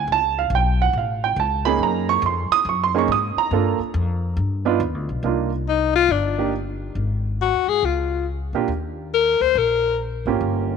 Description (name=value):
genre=jazz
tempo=139 BPM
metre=4/4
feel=swing 65% on 8ths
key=C minor from 5.2 s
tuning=A4 = 438 Hz
part: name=warm baby grand piano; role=accompaniment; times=0.0-10.8 s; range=Bb3 to Eb6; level=-20 LUFS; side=right 10 dB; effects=none
part: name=upright bass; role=bass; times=0.0-10.8 s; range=G1 to Bb2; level=-24 LUFS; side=left 2 dB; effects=none
part: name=breathy alto saxophone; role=melody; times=5.7-10.0 s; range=D4 to C5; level=-20 LUFS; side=left 9 dB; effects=none
room=light reverb, studio reverb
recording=1960s-style stereo with parts hard left and right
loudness=-19 LUFS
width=side -6 dB against mid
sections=0.0-5.2 A section; 5.2-10.8 B section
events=none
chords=0.1 Db5; 1.8 Gb6; 3.5 Gm7; 4.4 G7b13; 5.2 Cm11; 7.0 Ab5; 7.8 Db; 8.7 Eb5